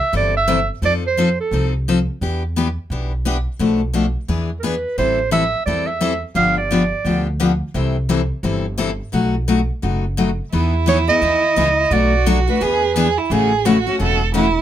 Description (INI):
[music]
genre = acoustic string swing (jazz manouche)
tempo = 173 BPM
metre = 4/4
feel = swing 60% on 8ths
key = C major, E major from 10.5 s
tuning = A4 = 440 Hz
[part]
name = breathy clarinet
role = melody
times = 0.0-1.7, 4.6-7.2, 10.9-13.1 s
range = A4 to F5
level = -18 LUFS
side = right 3 dB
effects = none
[part]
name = picked steel-string acoustic guitar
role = accompaniment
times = 0.1-14.5 s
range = B2 to A4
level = -19 LUFS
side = left 4 dB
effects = none
[part]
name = upright bass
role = bass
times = 0.1-14.6 s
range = E1 to F2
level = -22 LUFS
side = right 1 dB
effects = none
[part]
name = warm violin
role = second line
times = 10.5-14.6 s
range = E4 to A4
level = -20 LUFS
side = right 6 dB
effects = none
[sound]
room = light reverb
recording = none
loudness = -16 LUFS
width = side -11 dB against mid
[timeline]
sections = 0.0-10.5 A section; 10.5-14.6 B section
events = none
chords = 0.0 C6; 0.8 F7; 2.2 Em7; 3.6 Bm7b5; 4.3 E7; 5.0 Am7; 6.4 G7; 7.8 C6; 9.1 B7; 10.5 Emaj7; 11.9 Bm7; 12.6 E7; 13.3 A6